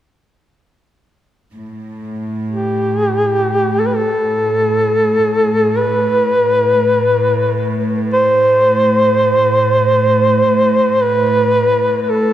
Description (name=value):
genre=caucasian folk, Caucasian lament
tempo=free time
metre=none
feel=none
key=A minor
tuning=A4 = 438 Hz
part: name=rich chamber string section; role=drone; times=1.5-12.3 s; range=A2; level=-19 LUFS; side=right 1 dB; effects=none
part: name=mellow duduk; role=melody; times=2.5-12.3 s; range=G4 to C5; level=-13 LUFS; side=equal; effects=none
room=wet church reverb, RT60 3.3 s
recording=none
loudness=-12 LUFS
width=side -12 dB against mid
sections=1.5-12.3 A section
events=none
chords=none